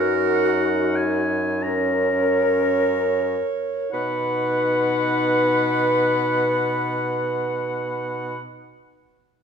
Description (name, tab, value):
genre	classical, slow romantic movement for wind quintet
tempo	24-34 BPM (dotted quarters)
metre	12/8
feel	rubato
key	B major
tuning	A4 = 440 Hz
part	mellow hollow silver concert flute	melody	0.0-8.4 s	F#4 to B5	-25 LUFS	left 6 dB	none
part	clear oboe	second line	0.0-8.4 s	F#5 to A#5	-28 LUFS	left 2 dB	none
part	dark French horn	accompaniment	0.0-8.4 s	C#4 to D#4	-28 LUFS	left 2 dB	none
part	warm clarinet	accompaniment	0.0-8.4 s	A#4 to C#5	-24 LUFS	right 4 dB	none
part	warm bassoon	bass	0.0-8.4 s	F#2 to B2	-26 LUFS	right 3 dB	none
room	moderate recital hall reverb, RT60 1.7 s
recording	minimal, uncompressed stereo recording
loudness	-19 LUFS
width	side -7 dB against mid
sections	0.0-3.9 A section; 3.9-9.4 B section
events	slowing down 0.0-3.9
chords	0.0 F#; 3.9 B